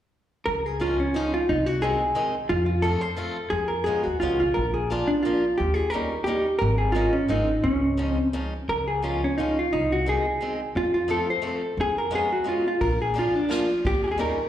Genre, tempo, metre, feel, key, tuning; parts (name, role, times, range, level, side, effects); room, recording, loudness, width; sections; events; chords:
musette waltz; 175 BPM; 3/4; swing 54% on 8ths; Db major; A4 = 440 Hz
vintage hollow-body jazz guitar; melody; 0.5-14.5 s; Db4 to C5; -23 LUFS; equal; slapback echo
upright bass; bass; 0.5-14.3 s; Ab1 to F2; -28 LUFS; equal
picked swing-style acoustic guitar; accompaniment; 0.8-14.4 s; Eb3 to F4; -31 LUFS; left 1 dB; slapback echo
jazz brush drum kit; drums; 12.8-14.3 s; kick drum, ride cymbal, snare drum; -30 LUFS; equal
moderate club reverb, RT60 0.5 s; live gig heard through the venue's PA, recital hall reverb; -22 LUFS; side -11 dB against mid
0.5-8.7 A section; 8.7-14.5 A section
0.5 Db; 1.5 Ab/C; 2.5 F; 3.5 Db7/F; 4.6 Bb; 5.6 Eb7; 6.6 Absus4; 7.3 Abadd9; 7.6 Dbadd9; 8.7 Db; 9.7 Ab/C; 10.7 F; 11.8 Db7/F; 12.8 Bb; 13.8 Eb7